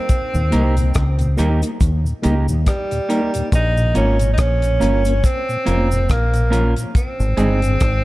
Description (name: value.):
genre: roots reggae.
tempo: 70 BPM.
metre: 4/4.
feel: swing 58% on 16ths.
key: Eb mixolydian.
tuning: A4 = 440 Hz.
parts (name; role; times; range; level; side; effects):
clear tenor saxophone; melody; 0.0-8.0 s; G3 to Eb4; -22 LUFS; right 1 dB; tape echo.
damped 70s drum kit; drums; 0.1-8.0 s; hi-hat, kick drum, rim click; -19 LUFS; equal; none.
cabasa; percussion; 0.1-8.0 s; none; -38 LUFS; right 1 dB; none.
mellow tonewheel organ; accompaniment; 0.3-7.7 s; Eb2 to Eb4; -25 LUFS; left 1 dB; chorus vibrato, tape echo.
deep dub fingered electric bass; bass; 0.3-8.0 s; F1 to Eb2; -17 LUFS; equal; none.
semi-hollow electric guitar; accompaniment; 0.5-7.6 s; Ab3 to Bb4; -24 LUFS; right 2 dB; tape echo.
room: light reverb, small room ambience.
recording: dark, warm production.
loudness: -15 LUFS.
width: side -18 dB against mid.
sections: 0.0-8.0 A section.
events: none.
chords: 0.0 Eb; 3.5 Bbm; 6.9 Ab.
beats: | 0.10 0.95 1.81 2.67 | 3.52 4.38 5.24 6.09 | 6.95 7.80.